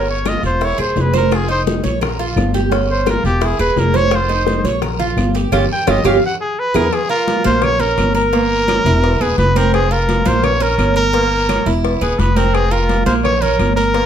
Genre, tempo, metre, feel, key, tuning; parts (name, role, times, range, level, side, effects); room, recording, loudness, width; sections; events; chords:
latin, Cuban son and guajira; 171 BPM; 4/4; straight; F minor; A4 = 440 Hz
clear trumpet; melody; 0.0-14.1 s; G4 to G5; -18 LUFS; equal
Cuban tres; arpeggios; 0.0-14.1 s; Bb3 to Db5; -20 LUFS; right 5 dB
upright bass; bass; 0.0-14.1 s; Eb1 to E2; -18 LUFS; left 1 dB
bongos and cowbell; percussion; 0.1-14.1 s; -24 LUFS; left 7 dB
congas; percussion; 0.1-14.1 s; -23 LUFS; left 2 dB
claves; percussion; 0.3-13.8 s; -31 LUFS; left 1 dB
guiro; percussion; 0.3-14.1 s; -33 LUFS; right 5 dB
moderate studio reverb, RT60 0.8 s; -13 LUFS; side -9 dB against mid
0.0-6.9 A section; 6.9-14.1 B section
trumpet solo 0.0-6.9; band accent 5.5-6.9; drum fill 6.2-6.9
0.0 Eb13; 0.6 E; 1.3 Fm7; 2.0 Bb5; 2.7 Edim7; 3.4 E; 4.1 F5; 4.8 Bb5; 5.5 Eb9/G; 6.2 E; 6.9 Fmadd11; 7.6 Bbm; 8.3 Gdim; 9.0 E5; 9.7 F5; 10.4 Bbm; 11.1 Gdim; 11.8 E5; 12.5 F5; 13.2 Bbm